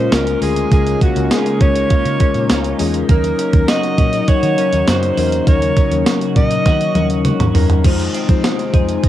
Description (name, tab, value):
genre	1980s-style pop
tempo	101 BPM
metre	4/4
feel	straight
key	Eb dorian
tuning	A4 = 440 Hz
part	breathy alto saxophone	melody	0.0-7.2 s	Gb4 to Eb5	-19 LUFS	right 1 dB	cassette tape
part	mellow tine electric piano	accompaniment	0.0-9.1 s	Gb3 to C5	-19 LUFS	left 7 dB	medium stereo tremolo, cassette tape
part	phased analog pad	sustained chords	0.0-9.1 s	C3 to F4	-25 LUFS	equal	phaser, chorus, cassette tape
part	twelve-string electric guitar	riff	0.0-9.1 s	Eb3 to Ab4	-27 LUFS	right 9 dB	analog chorus, cassette tape, tape echo
part	vintage muted fingered electric bass	bass	0.0-9.0 s	Db2 to F3	-21 LUFS	right 1 dB	none
part	clean 12-bit digital drum machine	drums	0.1-9.1 s	crash cymbal, hi-hat, kick drum, snare drum, tambourine, toms	-15 LUFS	right 1 dB	overdrive, cassette tape
room	moderate spring reverb, RT60 2.4 s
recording	home recording on cassette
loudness	-12 LUFS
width	side -12 dB against mid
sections	0.0-7.8 A section; 7.8-9.1 B section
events	drum fill 6.7-7.8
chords	0.0 Bbm7/Db; 3.1 Ebm7; 7.8 Fm7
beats	0.12 | 0.72 1.31 1.91 2.50 | 3.09 3.69 4.28 4.88 | 5.47 6.07 6.66 7.25 | 7.85 8.44 9.04